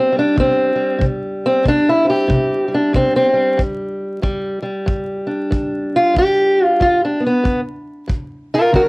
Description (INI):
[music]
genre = acoustic country blues, solo or duo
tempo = 93 BPM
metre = 4/4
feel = swing 62% on 8ths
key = unclear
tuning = A4 = 440 Hz
[part]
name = fingerpicked steel-string acoustic guitar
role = melody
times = 0.0-8.9 s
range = G2 to Bb4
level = -14 LUFS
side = equal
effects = cassette tape
[part]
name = kick drum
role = drums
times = 0.4-8.9 s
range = none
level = -21 LUFS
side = equal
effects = none
[sound]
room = light reverb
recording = home recording on cassette, vinyl crackle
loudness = -14 LUFS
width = side -27 dB against mid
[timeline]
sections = 0.0-8.9 A section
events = steel-string acoustic guitar solo 0.0-8.9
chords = 0.0 C5; 3.6 G5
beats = 0.38 | 1.02 1.67 2.31 2.95 | 3.59 4.23 4.88 5.52 | 6.16 6.81 7.45 8.10 | 8.74